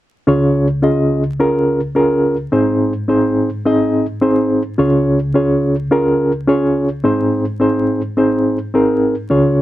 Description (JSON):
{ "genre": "soul", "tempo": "106 BPM", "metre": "4/4", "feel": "straight", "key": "Db major", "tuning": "A4 = 444 Hz", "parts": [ { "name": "reed electric piano", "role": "solo", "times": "0.3-9.6 s", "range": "Db2 to Eb5", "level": "-13 LUFS", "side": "equal", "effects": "overdrive, fast tremolo" } ], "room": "light reverb", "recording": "vinyl crackle", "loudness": "-13 LUFS", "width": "side -14 dB against mid", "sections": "0.3-9.3 A section", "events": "none", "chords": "0.3 Db; 2.5 Ab; 4.8 Db; 7.1 Ab" }